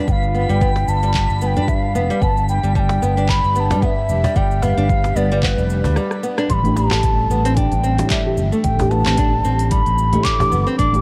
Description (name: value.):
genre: organic downtempo.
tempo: 112 BPM.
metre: 4/4.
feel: swing 56% on 16ths.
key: unclear.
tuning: A4 = 440 Hz.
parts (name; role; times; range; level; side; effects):
bowed-like drone; sustained chords; 0.0-11.0 s; A2 to B4; -32 LUFS; equal; built-in reverb, sidechain pumping.
nylon-string guitar; arpeggios; 0.0-10.9 s; G3 to D4; -26 LUFS; equal; delay.
twinkling granular texture; texture; 0.0-6.5 s; B5; -37 LUFS; equal; built-in reverb.
hollow bansuri; melody; 0.1-11.0 s; B4 to D6; -24 LUFS; equal; delay.
sustaining fretless electric bass; bass; 0.1-11.0 s; F1 to A2; -22 LUFS; equal; analog chorus.
electronic kick drum; drums; 0.1-10.9 s; none; -23 LUFS; equal; none.
organic electronic drum kit; drums; 0.1-11.0 s; cabasa, handclaps, hi-hat, rim click; -30 LUFS; equal; none.
cajon; percussion; 0.8-10.5 s; none; -27 LUFS; equal; none.
muted felt-like synth keys; accompaniment; 6.6-11.0 s; E3 to G4; -26 LUFS; equal; chorus, sidechain pumping.
room: light reverb.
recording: worn, warbling old tape, cassette tape, warbly pitch drift.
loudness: -17 LUFS.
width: mono.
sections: 0.0-6.5 A section; 6.5-11.0 B section.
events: break 6.0-6.5; drum fill 6.0-6.5.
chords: 0.0 G7; 6.5 Am11.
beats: | 0.08 0.61 1.15 1.68 | 2.22 2.75 3.29 3.83 | 4.36 4.90 5.43 5.97 | 6.50 7.04 7.58 8.11 | 8.65 9.18 9.72 10.26 | 10.79.